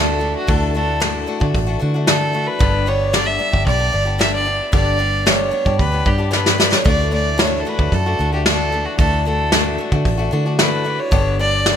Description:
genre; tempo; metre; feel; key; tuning
folk rock and heartland rock; 113 BPM; 4/4; straight; D major; A4 = 440 Hz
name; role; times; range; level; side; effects
rich fiddle; melody; 0.0-11.8 s; F#4 to E5; -21 LUFS; right 1 dB; ping-pong delay
picked old ladder-braced acoustic guitar; accompaniment; 0.0-11.8 s; G2 to G4; -22 LUFS; left 4 dB; none
vintage muted fingered electric bass; bass; 0.0-11.8 s; G1 to D3; -20 LUFS; right 1 dB; none
soft brush drum kit; drums; 0.5-11.8 s; hi-hat, kick drum, snare drum; -18 LUFS; equal; none
room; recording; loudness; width
light reverb; bright 1980s-style digital production; -15 LUFS; side -8 dB against mid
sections
0.0-11.8 A section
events
drum fill 6.3-6.9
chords
0.0 Dadd9; 2.6 G; 6.9 Dadd9; 11.1 G

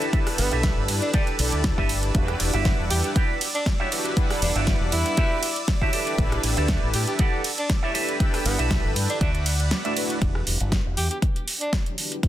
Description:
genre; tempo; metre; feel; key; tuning
nu-disco, nu disco; 119 BPM; 4/4; swing 54% on 16ths; E minor; A4 = 440 Hz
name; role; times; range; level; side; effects
mellow synth brass; accompaniment; 0.0-12.3 s; G3 to F#5; -29 LUFS; equal; chorus, sidechain pumping
lush unison pad; sustained chords; 0.0-10.2 s; B4 to E6; -34 LUFS; left 1 dB; chorus, sidechain pumping
electric guitar with an envelope filter; riff; 0.0-10.0 s; F#4 to G5; -31 LUFS; right 4 dB; wide subtle chorus, vintage 12-bit sampler grit, tape echo
pop drum kit; drums; 0.0-12.3 s; hi-hat, ride cymbal, rim click, snare drum; -28 LUFS; right 1 dB; overdrive
electronic kick drum; drums; 0.1-12.3 s; none; -23 LUFS; equal; overdrive
breathy tenor saxophone; melody; 0.4-11.7 s; B3 to G4; -31 LUFS; equal; tape echo
fingered electric bass with an envelope filter; bass; 0.4-11.1 s; E1 to A2; -25 LUFS; equal; none
room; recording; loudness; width
little or no reverb; dense, heavily limited modern master; -21 LUFS; side -13 dB against mid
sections
0.0-10.2 A section; 10.2-12.3 B section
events
drop 0.0-10.2; kick drops out 9.7-10.2; filter sweep on analog polysynth 10.2-12.3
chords
0.0 G69; 2.1 Em9; 5.9 A7sus4; 7.9 G69; 9.2 D69; 10.2 Em9

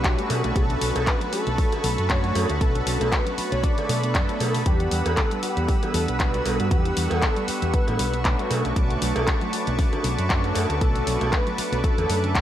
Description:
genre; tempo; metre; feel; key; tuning
nu-disco, nu disco; 117 BPM; 4/4; swing 55% on 16ths; unclear; A4 = 438 Hz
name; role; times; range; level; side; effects
wide unison lead; melody; 0.0-12.4 s; G4 to D5; -30 LUFS; equal; cassette tape, dub echo
mellow synth brass; accompaniment; 0.0-12.4 s; G3 to F#5; -29 LUFS; right 1 dB; chorus, sidechain pumping, tape echo
lush unison pad; sustained chords; 0.0-12.4 s; B4 to E6; -31 LUFS; right 1 dB; chorus, sidechain pumping
soft round pluck; arpeggios; 0.0-12.4 s; C#3 to B3; -36 LUFS; left 1 dB; none
fingered electric bass; bass; 0.0-12.4 s; B1 to B2; -26 LUFS; equal; none
electronic kick drum; drums; 0.0-12.4 s; none; -23 LUFS; equal; studio reverb
house drum kit; drums; 0.0-12.4 s; handclaps, hi-hat; -29 LUFS; left 1 dB; studio reverb
cowbell; percussion; 0.3-12.1 s; none; -32 LUFS; right 1 dB; tape echo
room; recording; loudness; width
light reverb; echo-heavy mix; -20 LUFS; side -11 dB against mid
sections
0.0-12.4 A section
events
none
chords
0.3 Bm9; 4.7 Em7; 8.5 Bm9

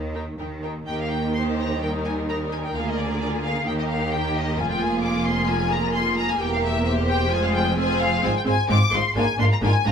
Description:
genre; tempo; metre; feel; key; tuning
quick classical-period movement for string orchestra; 130 BPM; 4/4; rubato; Eb major; A4 = 440 Hz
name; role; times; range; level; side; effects
clear symphonic double bass section; bass; 0.0-9.9 s; E1 to Eb2; -27 LUFS; right 1 dB; none
rich symphonic cello section; bass; 0.0-9.9 s; E2 to Eb3; -28 LUFS; right 1 dB; none
rich symphonic violin section; melody; 0.1-9.9 s; D5 to D6; -26 LUFS; left 4 dB; none
warm symphonic violin section; second line; 0.1-9.9 s; Eb4 to C5; -28 LUFS; equal; none
clear symphonic viola section; accompaniment; 0.1-9.9 s; G3 to G4; -27 LUFS; right 1 dB; none
room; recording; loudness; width
light reverb; minimal, uncompressed stereo recording; -20 LUFS; side -7 dB against mid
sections
0.9-9.9 A section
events
none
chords
0.0 Eb; 2.7 Bb/D; 3.7 Eb; 4.6 Fm; 6.4 C/E; 7.3 Fm; 8.2 Fm/Ab; 9.2 Bb7/Ab

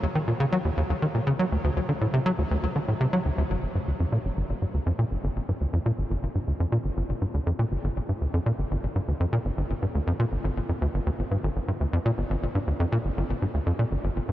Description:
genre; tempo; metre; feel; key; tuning
ambient; 121 BPM; 4/4; straight; unclear; A4 = 441 Hz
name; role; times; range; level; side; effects
tight sequencer bass; solo; 0.0-14.3 s; G1 to Gb3; -24 LUFS; equal; analog chorus, ping-pong delay
room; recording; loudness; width
moderate huge ambient reverb, RT60 7.8 s; worn, warbling old tape, cassette tape, warbly pitch drift; -24 LUFS; side -14 dB against mid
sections
0.0-3.5 A section; 3.5-14.3 B section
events
none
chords
none

